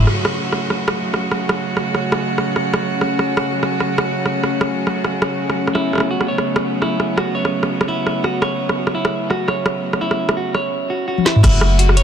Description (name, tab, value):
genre	half-time drum and bass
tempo	169 BPM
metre	4/4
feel	swing 55% on 16ths, half-time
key	F# minor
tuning	A4 = 439 Hz
part	bright chamber cello section	sustained chords	0.0-12.0 s	C#3 to F#4	-22 LUFS	right 2 dB	sidechain pumping
part	clean electric guitar	arpeggios	0.0-0.1, 5.7-12.0 s	E4 to C#5	-24 LUFS	right 1 dB	dub echo
part	long sustained 808-style bass	bass	0.0-0.1, 11.4-12.0 s	E1 to F#1	-14 LUFS	equal	none
part	drum and bass drum kit	drums	0.1-12.0 s	crash cymbal, hi-hat, rim click, snare drum, toms	-20 LUFS	equal	none
part	metallic inharmonic drone	texture	1.5-12.0 s	C#4	-27 LUFS	left 4 dB	chorus, built-in reverb
part	electronic kick drum	drums	11.4-11.5 s	none	-13 LUFS	equal	none
room	light reverb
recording	none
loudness	-16 LUFS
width	side -8 dB against mid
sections	0.1-11.4 A section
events	drum fill 11.2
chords	0.1 F#m